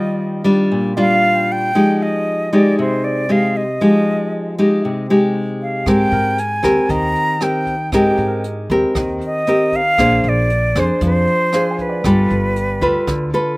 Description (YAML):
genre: bossa nova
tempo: 116 BPM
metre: 4/4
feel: straight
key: unclear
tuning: A4 = 438 Hz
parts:
  - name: silver concert flute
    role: melody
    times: 0.0-13.6 s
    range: Cb5 to Bb5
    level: -18 LUFS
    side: equal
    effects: none
  - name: clear baby grand piano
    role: accompaniment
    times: 0.0-13.6 s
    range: Eb4 to Ab5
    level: -31 LUFS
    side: right 3 dB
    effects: none
  - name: nylon-string guitar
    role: accompaniment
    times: 0.0-13.6 s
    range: Bb2 to C5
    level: -16 LUFS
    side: equal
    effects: none
  - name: upright bass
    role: bass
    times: 5.9-13.3 s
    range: G1 to Ab2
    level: -21 LUFS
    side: right 1 dB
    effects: none
  - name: jazz brush drum kit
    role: drums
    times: 5.9-13.5 s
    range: hi-hat, kick drum, rim click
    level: -28 LUFS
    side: right 1 dB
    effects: none
room: little or no reverb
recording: recorded outdoors, with no room sound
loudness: -14 LUFS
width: side -23 dB against mid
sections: 0.0-13.6 A section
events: none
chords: 0.0 Ebmaj9; 1.7 Fm9; 5.9 Abmaj9; 10.0 Bb9; 12.0 G9